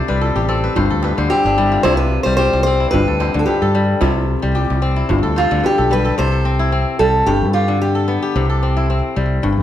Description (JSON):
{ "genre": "west african traditional, West African string and xylophone music", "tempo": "111 BPM", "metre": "4/4", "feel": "straight", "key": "C major", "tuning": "A4 = 441 Hz", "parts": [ { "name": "kora", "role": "arpeggios", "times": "0.0-9.6 s", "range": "G2 to E5", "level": "-18 LUFS", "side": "left 4 dB", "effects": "slapback echo" }, { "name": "fingered electric bass", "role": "bass", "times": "0.1-9.6 s", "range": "G1 to G2", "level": "-18 LUFS", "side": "equal", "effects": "none" }, { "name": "djembe", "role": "percussion", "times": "0.2-6.2 s", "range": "none", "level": "-25 LUFS", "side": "right 3 dB", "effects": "none" }, { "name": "fingerpicked acoustic archtop guitar", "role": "melody", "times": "1.3-8.2 s", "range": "F4 to C5", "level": "-18 LUFS", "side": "right 1 dB", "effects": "none" } ], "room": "light reverb", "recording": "vinyl crackle", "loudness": "-14 LUFS", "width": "side -11 dB against mid", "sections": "0.0-6.2 A section; 6.2-9.6 B section", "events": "kora fill 0.0-1.8; drum fill 5.8-6.2", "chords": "0.0 C5; 0.8 G5; 1.8 C; 2.9 G; 4.0 C; 5.1 G; 6.2 C; 7.3 G; 8.3 C" }